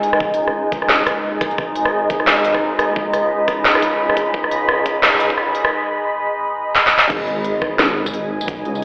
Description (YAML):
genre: half-time drum and bass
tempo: 174 BPM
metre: 4/4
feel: swing 57% on 16ths, half-time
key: G# minor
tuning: A4 = 438 Hz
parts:
  - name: deep dark ambient pad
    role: sustained chords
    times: 0.0-8.8 s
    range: G#3 to B5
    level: -18 LUFS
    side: equal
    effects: chorus, built-in reverb, sidechain pumping
  - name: dark detuned saw bass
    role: bass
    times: 0.0-8.8 s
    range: D#1 to C#2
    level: -25 LUFS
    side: equal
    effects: high-pass filter
  - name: drum and bass drum kit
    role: drums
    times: 0.0-8.8 s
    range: crash cymbal, hi-hat, rim click, snare drum, tambourine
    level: -17 LUFS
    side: equal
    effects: high-pass filter on snare, high-pass filter on hats, high-pass filter on cymbals, high-pass filter on perc, high-pass filter on room
  - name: electronic kick drum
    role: drums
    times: 0.2-8.6 s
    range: none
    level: -25 LUFS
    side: equal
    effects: overdrive
room: wet lush hall reverb, RT60 2.0 s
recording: played on a big sound system in a bare room, large studio reverb, high-pass filter, telephone sound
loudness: -14 LUFS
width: side -30 dB against mid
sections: 0.0-7.1 A section; 7.1-8.8 B section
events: build-up 0.0-7.1; drum fill 6.8-7.1; drop 7.1-8.8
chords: 0.0 G#5